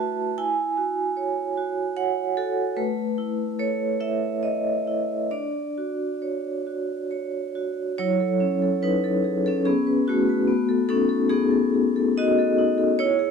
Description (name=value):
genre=classical, contemporary piece for solo vibraphone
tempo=66-76 BPM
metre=3/4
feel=rubato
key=unclear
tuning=A4 = 439 Hz
part: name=vibraphone with medium mallets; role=solo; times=0.0-13.3 s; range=F#3 to A5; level=-21 LUFS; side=equal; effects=none
room=moderate stone room reverb, RT60 1.1 s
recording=dark, warm production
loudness=-21 LUFS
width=side -6 dB against mid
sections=0.0-8.0 A section; 8.0-13.3 B section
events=none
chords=0.4 E69; 2.8 Aadd9; 5.3 Dmaj7; 8.0 F#m7; 9.6 C#m7; 10.5 B13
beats=| 0.38 1.18 1.97 | 2.77 3.60 4.44 | 5.32 6.22 7.11 | 7.97 8.81 9.65 | 10.47 11.29 12.17 | 12.98